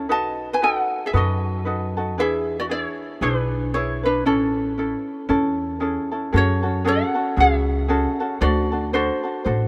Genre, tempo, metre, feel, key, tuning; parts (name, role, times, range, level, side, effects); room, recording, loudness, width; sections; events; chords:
Hawaiian; 115 BPM; 4/4; swing 59% on 8ths; A4 = 440 Hz
ukulele; accompaniment; 0.0-9.7 s; C#4 to C5; -26 LUFS; equal
upright bass; bass; 0.0-9.7 s; A1 to F#2; -26 LUFS; equal
ukulele; melody; 0.1-9.7 s; C#4 to A5; -25 LUFS; equal
light reverb; -22 LUFS; mono
0.0-6.3 A section; 6.3-9.7 B section
0.1 B7; 2.2 E7; 4.3 Amaj7; 6.3 F#madd9; 8.4 D7